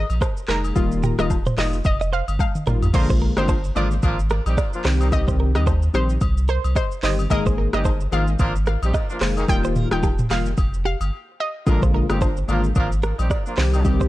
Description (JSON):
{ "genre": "afrobeats", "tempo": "110 BPM", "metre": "4/4", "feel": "swing 58% on 16ths", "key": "Eb major", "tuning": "A4 = 440 Hz", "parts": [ { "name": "analog pluck", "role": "melody", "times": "0.0-11.5 s", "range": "Bb4 to G5", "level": "-28 LUFS", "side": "equal", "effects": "chorus, digital delay" }, { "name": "direct-recorded clean electric guitar", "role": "riff", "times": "0.0-14.1 s", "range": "G4 to Eb5", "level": "-30 LUFS", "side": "right 5 dB", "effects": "digital delay" }, { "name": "warm sub bass", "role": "bass", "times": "0.0-14.1 s", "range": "Eb1 to Eb2", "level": "-22 LUFS", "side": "equal", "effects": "none" }, { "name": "afro-pop drum kit", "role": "drums", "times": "0.1-14.1 s", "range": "crash cymbal, handclaps, hi-hat, kick drum, rim click, shaker, toms", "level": "-22 LUFS", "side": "equal", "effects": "vintage 12-bit sampler grit" }, { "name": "agogo bells and woodblock", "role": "percussion", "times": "0.1-14.0 s", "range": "none", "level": "-35 LUFS", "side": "left 6 dB", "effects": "none" }, { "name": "warm analog keys", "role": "accompaniment", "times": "0.5-14.1 s", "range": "D3 to Ab4", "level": "-25 LUFS", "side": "left 3 dB", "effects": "chorus" }, { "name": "clear horn section", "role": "second line", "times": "2.9-13.8 s", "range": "Eb3 to Bb4", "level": "-30 LUFS", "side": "equal", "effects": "digital delay" } ], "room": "little or no reverb", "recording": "dark, warm production", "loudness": "-18 LUFS", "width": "side -16 dB against mid", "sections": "0.0-2.9 A section; 2.9-14.1 B section", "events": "drum fill 2.4-2.9; break 11.1-11.7", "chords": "0.0 Absus2; 0.8 Ebadd9; 2.9 Bb7; 4.8 Cm; 7.3 Absus2; 9.5 Ebadd9; 11.7 Bb7; 13.6 Cm" }